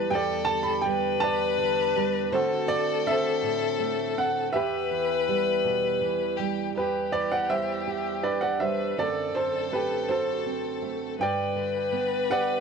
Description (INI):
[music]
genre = acoustic folk-pop ballad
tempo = 54 BPM (dotted quarters)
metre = 6/8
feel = straight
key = E minor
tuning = A4 = 443 Hz
[part]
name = bright baby grand piano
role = melody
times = 0.0-12.6 s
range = F#4 to B5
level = -28 LUFS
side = right 2 dB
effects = tape echo
[part]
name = rich violin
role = second line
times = 0.0-12.6 s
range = G4 to B4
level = -28 LUFS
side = left 8 dB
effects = none
[part]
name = fingerpicked steel-string acoustic guitar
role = accompaniment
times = 0.0-12.6 s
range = E2 to G4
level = -31 LUFS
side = right 11 dB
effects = none
[sound]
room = wet echo chamber reverb, RT60 1.9 s, studio reverb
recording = 1960s-style stereo with parts hard left and right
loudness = -24 LUFS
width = side -6 dB against mid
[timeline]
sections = 0.0-6.7 A section; 6.7-12.6 B section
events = none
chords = 0.1 A7sus4/E; 2.3 D7; 4.5 Em; 6.7 Em7; 9.0 D7/F#; 11.2 Gmaj7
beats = | 0.11 1.22 | 2.32 3.42 | 4.53 5.64 | 6.75 7.86 | 8.97 10.08 | 11.19 12.30